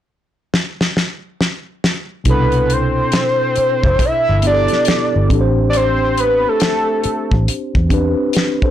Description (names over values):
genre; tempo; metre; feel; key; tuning
R&B, neo-soul; 69 BPM; 4/4; swing 63% on 16ths; unclear; A4 = 441 Hz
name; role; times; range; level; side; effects
damped 70s drum kit; drums; 0.5-8.7 s; hi-hat, kick drum, snare drum; -17 LUFS; equal; none
mellow tine electric piano; accompaniment; 2.2-8.7 s; B2 to C5; -20 LUFS; equal; fast stereo tremolo
fat analog lead; melody; 2.3-7.3 s; A4 to E5; -16 LUFS; equal; slapback echo, plate reverb
vintage muted fingered electric bass; bass; 2.3-8.1 s; F1 to E2; -17 LUFS; equal; transformer saturation
room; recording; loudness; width
moderate studio reverb, RT60 0.6 s; blown-out, overdriven recording, overdrive; -14 LUFS; side -11 dB against mid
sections
0.0-2.3 A section; 2.3-8.7 B section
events
drum fill 0.5-2.3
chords
0.0 N.C.; 2.3 Cmaj9; 5.3 Am9